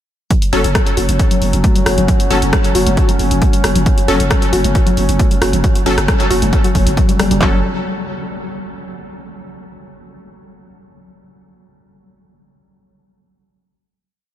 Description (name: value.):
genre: driving peak-time techno.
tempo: 135 BPM.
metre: 4/4.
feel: straight.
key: F# phrygian.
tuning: A4 = 440 Hz.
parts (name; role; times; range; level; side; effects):
warbly dusty pluck; riff; 0.3-7.6 s; F#3 to F#4; -21 LUFS; left 1 dB; chorus, sidechain pumping, diffuse ambient delay.
analog drone; drone; 0.3-7.5 s; F#3 to C#4; -22 LUFS; equal; chorus, sidechain pumping.
punchy analog drum machine; drums; 0.3-7.5 s; handclaps, kick drum; -15 LUFS; equal; none.
punchy analog drum machine; drums; 0.3-7.4 s; hi-hat, rim click; -22 LUFS; left 1 dB; none.
supersaw stab; stabs; 0.5-7.6 s; F#3 to A4; -22 LUFS; left 1 dB; sidechain pumping, diffuse ambient delay.
growling 808-style bass; bass; 0.5-7.6 s; F#1; -20 LUFS; equal; sidechain pumping, low-pass filter.
room: moderate cathedral reverb, RT60 6.7 s.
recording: dreamy mix soaked in reverb.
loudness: -12 LUFS.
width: side -11 dB against mid.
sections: 0.3-7.4 groove; 7.4-9.2 final chord.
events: filter sweep on synth arpeggio sound 0.3-7.4.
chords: 0.3 F#5; 7.4 N.C..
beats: | 0.31 0.75 1.20 1.64 | 2.08 2.53 2.97 3.42 | 3.86 4.31 4.75 5.20 | 5.64 6.08 6.53 6.97 | 7.42.